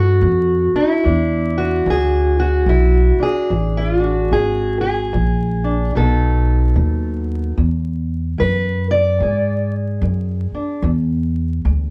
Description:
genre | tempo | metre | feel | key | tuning
acoustic country blues, solo or duo | 74 BPM | 4/4 | swing 61% on 8ths | E mixolydian | A4 = 437 Hz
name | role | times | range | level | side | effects
fingerpicked steel-string acoustic guitar | melody | 0.0-11.9 s | E2 to D5 | -21 LUFS | equal | none
upright bass | bass | 0.0-11.9 s | G#1 to G#2 | -20 LUFS | equal | none
room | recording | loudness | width
moderate studio reverb, RT60 0.6 s | heard from further back in the room, vinyl crackle | -18 LUFS | mono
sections
0.0-7.6 A section; 7.6-11.9 B section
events
steel-string acoustic guitar solo 7.6-11.9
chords
0.0 A5; 1.0 E7; 5.9 B7; 7.6 E7

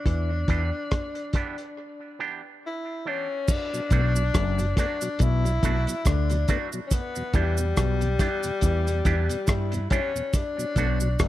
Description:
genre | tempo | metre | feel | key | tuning
roots reggae | 70 BPM | 4/4 | swing 57% on 16ths | B minor | A4 = 440 Hz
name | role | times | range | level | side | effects
warm tenor saxophone | melody | 0.0-11.3 s | G3 to E4 | -30 LUFS | left 3 dB | tape echo
overdriven clav | riff | 0.1-11.3 s | F#2 to G3 | -34 LUFS | left 9 dB | none
vintage muted fingered electric bass | bass | 0.1-11.3 s | F#1 to G2 | -24 LUFS | equal | none
cloth-damped thuddy drum kit | drums | 0.1-11.3 s | crash cymbal, hi-hat, kick drum, rim click | -25 LUFS | equal | none
electric guitar with an envelope filter | accompaniment | 0.5-11.0 s | E3 to G4 | -35 LUFS | right 6 dB | spring reverb, tape echo
cabasa | percussion | 3.5-11.3 s | none | -38 LUFS | right 7 dB | none
mellow tonewheel organ | accompaniment | 3.7-11.1 s | E2 to E4 | -36 LUFS | left 1 dB | chorus vibrato, slow rotary speaker, tape echo
room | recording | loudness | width
studio ambience | dark, warm production | -23 LUFS | side -14 dB against mid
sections
0.0-3.5 A section; 3.5-11.3 B section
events
break 1.8-3.5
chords
0.1 Em7; 3.5 Bm7; 6.9 Em7; 10.3 Bm7

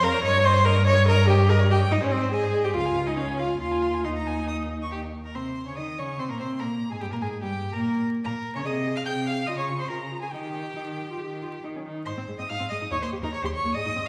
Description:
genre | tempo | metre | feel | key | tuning
quick classical-period movement for string quartet | 135-148 BPM | 4/4 | rubato | Ab major | A4 = 440 Hz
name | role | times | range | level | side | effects
rich violin | melody | 0.0-14.1 s | C5 to G6 | -36 LUFS | equal | none
clear violin | second line | 0.0-14.1 s | G4 to Eb6 | -36 LUFS | equal | none
clear viola | accompaniment | 0.0-14.1 s | G3 to Db5 | -29 LUFS | equal | none
warm cello | bass | 0.0-14.1 s | Db2 to Eb3 | -29 LUFS | equal | none
room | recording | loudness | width
wet recital hall reverb, RT60 1.4 s | recorded in a church or concert hall, vinyl crackle | -25 LUFS | mono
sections
0.0-5.4 A section; 5.4-14.1 B section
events
none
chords
0.2 Eb7/G; 1.9 Ab; 2.7 Db; 3.6 Ab/Eb; 4.5 Eb5; 5.4 Ab/C (rootless); 7.0 Gm; 8.7 Ab/C; 9.5 Db; 10.3 Eb; 12.1 Ab; 12.9 Eb

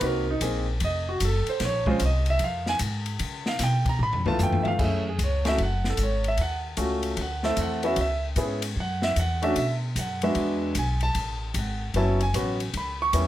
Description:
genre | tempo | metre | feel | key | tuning
jazz piano trio | 151 BPM | 4/4 | swing 66% on 8ths | F# minor from 4.8 s | A4 = 442 Hz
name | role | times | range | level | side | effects
warm grand piano | melody | 0.0-13.3 s | F#3 to C#6 | -26 LUFS | right 1 dB | none
upright bass | bass | 0.0-13.3 s | F1 to Db3 | -27 LUFS | equal | none
open jazz drum kit | drums | 0.0-13.3 s | crash cymbal, hi-hat, kick drum, ride cymbal, snare drum, toms | -31 LUFS | left 2 dB | none
room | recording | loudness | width
light reverb | none | -23 LUFS | side -13 dB against mid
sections
0.0-4.8 A section; 4.8-13.3 A section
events
grand piano solo 0.0-13.3; drum fill 4.0-4.8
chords
0.0 Cm7b5; 0.8 F7b9; 1.6 Bbm9; 3.2 Db7alt; 4.8 F#m9; 6.4 D#m7b5; 7.2 D9; 8.0 C#m; 9.6 B5; 10.4 E7; 11.1 A6; 12.7 C#m7b5

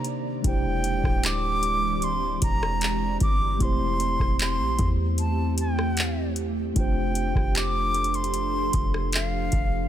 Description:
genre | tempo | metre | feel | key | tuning
contemporary R&B | 76 BPM | 4/4 | straight | F major | A4 = 440 Hz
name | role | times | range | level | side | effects
breathy silver concert flute | melody | 0.0-9.9 s | F5 to D6 | -28 LUFS | right 1 dB | digital delay
mellow tine electric piano | accompaniment | 0.0-9.9 s | G#3 to C5 | -32 LUFS | equal | medium stereo tremolo
ethereal airy pad | sustained chords | 0.0-9.9 s | C3 to D5 | -31 LUFS | right 1 dB | ensemble chorus, built-in reverb
warm 808-style bass | bass | 0.0-9.9 s | D1 to C3 | -28 LUFS | equal | none
booming analog drum machine | drums | 0.0-9.7 s | handclaps, hi-hat, kick drum, rim click | -26 LUFS | equal | none
room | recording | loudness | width
little or no reverb | none | -22 LUFS | side -11 dB against mid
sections
0.0-9.9 A section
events
none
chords
0.4 E7alt; 3.6 Am7/E; 6.8 F69

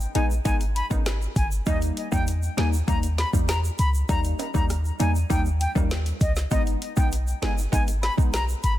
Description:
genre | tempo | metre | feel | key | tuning
dancehall | 99 BPM | 4/4 | straight | G# harmonic minor | A4 = 440 Hz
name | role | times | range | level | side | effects
clean 808-style bass | bass | 0.0-8.8 s | G1 to E2 | -24 LUFS | equal | none
egg shaker and timbales | percussion | 0.0-8.8 s | none | -38 LUFS | right 5 dB | none
silver concert flute | melody | 0.1-8.7 s | D#5 to B5 | -30 LUFS | left 1 dB | ping-pong delay
wavetable chord stab | accompaniment | 0.1-8.4 s | G3 to D#4 | -30 LUFS | left 1 dB | phaser
afro-pop drum kit | drums | 0.2-8.8 s | hi-hat, kick drum, rim click, snare drum | -26 LUFS | equal | none
room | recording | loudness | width
digital ambience | dense, heavily limited modern master | -21 LUFS | side -14 dB against mid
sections
0.0-8.8 A section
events
none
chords
0.0 G#m; 1.7 D#; 6.5 G#m

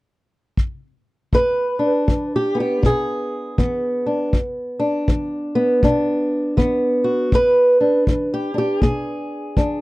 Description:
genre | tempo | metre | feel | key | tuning
acoustic country blues, solo or duo | 80 BPM | 4/4 | swing 62% on 8ths | E mixolydian | A4 = 441 Hz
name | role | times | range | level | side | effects
kick drum | drums | 0.6-9.8 s | none | -19 LUFS | equal | none
fingerpicked old ladder-braced acoustic guitar | melody | 1.3-9.8 s | E2 to B4 | -17 LUFS | equal | none
room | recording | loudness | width
little or no reverb | dry, close 1970s-style studio recording | -17 LUFS | side -19 dB against mid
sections
0.0-1.3 A section; 1.3-9.8 B section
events
none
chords
0.0 N.C.; 1.3 E7

